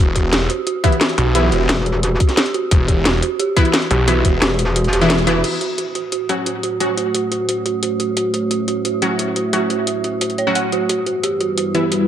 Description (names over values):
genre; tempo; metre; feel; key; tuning
dark technical drum and bass; 176 BPM; 4/4; straight; F# phrygian; A4 = 439 Hz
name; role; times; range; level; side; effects
dark detuned synth bell; arpeggios; 0.0-12.0 s; F#4 to F#5; -21 LUFS; right 4 dB; chorus, sidechain pumping, tape echo
snarling distorted saw bass; bass; 0.0-4.4 s; E1 to B1; -17 LUFS; left 1 dB; distortion, tube saturation, sidechain pumping
drum and bass drum kit; drums; 0.2-12.0 s; crash cymbal, hi-hat, snare drum; -20 LUFS; left 1 dB; none
electronic kick drum; drums; 0.2-4.3 s; none; -15 LUFS; left 1 dB; none
orchestra-hit-like synth stab; stabs; 0.8-1.4, 3.6-6.9, 9.0-11.8 s; E3 to F#4; -21 LUFS; left 1 dB; built-in reverb, tape echo
metallic wobble bass; bass; 1.7-2.2, 4.4-5.4 s; E1; -18 LUFS; left 1 dB; distortion, chorus
dark analog pad; sustained chords; 6.4-12.1 s; G3 to F#5; -23 LUFS; equal; chorus, sidechain pumping
room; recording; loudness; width
moderate lush hall reverb, RT60 2.0 s, digital ambience; none; -15 LUFS; side -10 dB against mid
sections
0.0-5.4 A section; 5.4-12.1 B section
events
kick drops out 4.8-5.4; band accent 5.1; filter sweep on analog synth pad 5.4-12.1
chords
0.0 Em; 5.4 F#m; 10.9 Em